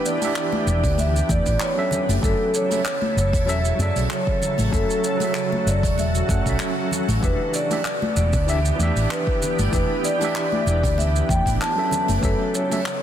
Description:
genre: sunset chillout.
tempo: 96 BPM.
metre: 4/4.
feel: swing 54% on 16ths.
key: E dorian.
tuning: A4 = 440 Hz.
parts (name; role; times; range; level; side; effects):
vibraphone with soft mallets; melody; 0.0-13.0 s; A4 to A5; -25 LUFS; equal; tape echo.
overdriven tine electric piano; accompaniment; 0.0-12.8 s; C#3 to F#5; -27 LUFS; moving between left 5 dB and right 3 dB; fast tremolo, auto-pan, tape echo.
shimmering ambient pad; sustained chords; 0.0-13.0 s; C#3 to A4; -28 LUFS; equal; chorus, built-in reverb.
jazz brush drum kit; drums; 0.1-13.0 s; handclaps, hi-hat, shaker; -30 LUFS; right 1 dB; soft clipping on snare.
congas; percussion; 0.2-12.8 s; none; -31 LUFS; left 3 dB; none.
hollow-body short-scale fingered electric bass; bass; 0.7-12.3 s; E1 to F#2; -21 LUFS; equal; none.
electronic kick drum; drums; 0.8-12.4 s; none; -24 LUFS; equal; none.
room: light reverb, small room ambience.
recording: dense, heavily limited modern master.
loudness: -19 LUFS.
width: side -10 dB against mid.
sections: 0.0-13.0 A section.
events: none.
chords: 0.0 Em7; 1.9 F#m7; 7.2 Em7; 11.9 F#m7.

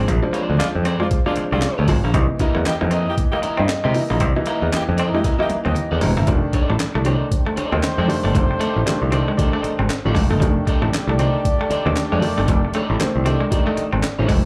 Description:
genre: funk.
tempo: 116 BPM.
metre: 4/4.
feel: swing 60% on 16ths.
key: F mixolydian.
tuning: A4 = 440 Hz.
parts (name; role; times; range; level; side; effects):
electric guitar at the edge of break-up; accompaniment; 0.0-14.4 s; Eb4 to F5; -29 LUFS; equal; slapback echo.
semi-hollow electric guitar; riff; 0.0-14.4 s; F3 to C4; -29 LUFS; equal; slapback echo.
dark upright piano; stabs; 0.0-14.5 s; Eb3 to F4; -26 LUFS; equal; slapback echo.
picked electric bass; bass; 0.0-14.4 s; E1 to C3; -22 LUFS; equal; none.
breakbeat sampler-style drum kit; drums; 0.1-14.4 s; handclaps, hi-hat, kick drum, snare drum, toms; -24 LUFS; equal; none.
mellow horn section; second line; 0.6-14.3 s; Ab3 to D#5; -28 LUFS; equal; slapback echo.
room: little or no reverb.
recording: live gig heard through the venue's PA, club reverb.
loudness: -19 LUFS.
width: mono.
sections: 0.0-6.3 A section; 6.3-14.5 B section.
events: drum fill 5.2-6.3.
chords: 0.0 Bb9; 2.1 C7#9; 6.3 F13.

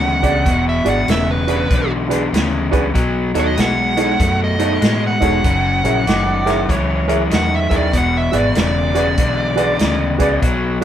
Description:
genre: electric blues shuffle.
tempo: 96 BPM.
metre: 4/4.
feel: swing 64% on 8ths.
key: unclear.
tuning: A4 = 440 Hz.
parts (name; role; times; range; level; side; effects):
dark smooth lead guitar; melody; 0.0-10.4 s; B4 to F#5; -20 LUFS; right 1 dB; overdrive.
crunchy overdriven guitar; riff; 0.0-10.8 s; E2 to A3; -19 LUFS; left 2 dB; none.
vintage muted fingered electric bass; bass; 0.0-10.8 s; E1 to A2; -21 LUFS; equal; none.
clear upright piano; accompaniment; 0.2-10.8 s; D4 to E5; -21 LUFS; right 3 dB; none.
vintage drum kit; drums; 0.2-10.6 s; hi-hat, kick drum, snare drum; -20 LUFS; equal; none.
overdriven harmonica; second line; 6.1-7.2 s; C#5 to D5; -24 LUFS; left 1 dB; none.
room: moderate studio reverb, RT60 0.9 s.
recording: band playing live in one room.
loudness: -14 LUFS.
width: side -10 dB against mid.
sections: 0.0-10.8 A section.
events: none.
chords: 0.0 E7; 3.0 B7; 5.4 F#7; 7.9 E7.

